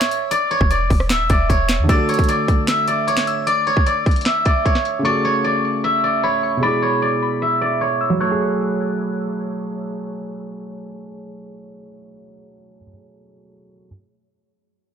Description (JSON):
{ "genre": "hip hop, trap", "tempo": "152 BPM", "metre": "4/4", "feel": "half-time", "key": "F# minor", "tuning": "A4 = 441 Hz", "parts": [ { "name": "steel-string zither", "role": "melody", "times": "0.0-10.1 s", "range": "C#5 to E5", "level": "-19 LUFS", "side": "equal", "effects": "ping-pong delay" }, { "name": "trap drum kit", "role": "drums", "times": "0.0-4.9 s", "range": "finger snaps, hi-hat, kick drum, rim click, snare drum", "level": "-18 LUFS", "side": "equal", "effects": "overdrive" }, { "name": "clean 808-style bass", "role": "bass", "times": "0.6-1.9 s", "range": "D1 to E2", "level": "-20 LUFS", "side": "equal", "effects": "none" }, { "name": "dark grand piano", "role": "accompaniment", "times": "1.8-13.9 s", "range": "B2 to A4", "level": "-23 LUFS", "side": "right 1 dB", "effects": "none" }, { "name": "glassy synth bell", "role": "second line", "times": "1.9-9.3 s", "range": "B5 to F#6", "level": "-27 LUFS", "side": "left 4 dB", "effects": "chorus, ping-pong delay" } ], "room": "little or no reverb", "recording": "blown-out, overdriven recording, overdrive, low-pass filter", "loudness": "-16 LUFS", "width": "side -8 dB against mid", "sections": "0.0-1.9 A section; 1.9-8.2 B section; 8.2-11.4 C section", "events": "filter sweep 1.9-8.2", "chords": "0.3 Dsus2; 1.9 D; 5.0 F#madd9; 6.6 E; 8.2 F#madd9" }